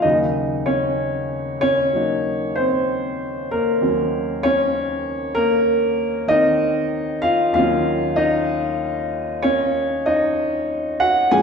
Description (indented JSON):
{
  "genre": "solo jazz",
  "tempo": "64 BPM",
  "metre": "4/4",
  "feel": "swing 66% on 8ths, rubato",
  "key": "unclear",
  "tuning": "A4 = 436 Hz",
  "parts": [
    { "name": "warm upright piano", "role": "solo", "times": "0.0-11.4 s", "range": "Eb2 to Ab5", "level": "-17 LUFS", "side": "equal", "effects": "none" }
  ],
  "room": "wet scoring stage reverb, RT60 1.4 s",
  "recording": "recorded in a church or concert hall",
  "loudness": "-18 LUFS",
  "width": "side -6 dB against mid",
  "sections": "0.0-11.4 A section",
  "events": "none",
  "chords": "0.0 Ebm7",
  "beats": "| 0.04 1.00 1.96 2.90 | 3.83 4.75 5.68 6.62 | 7.55 8.49 9.43 10.38 | 11.33"
}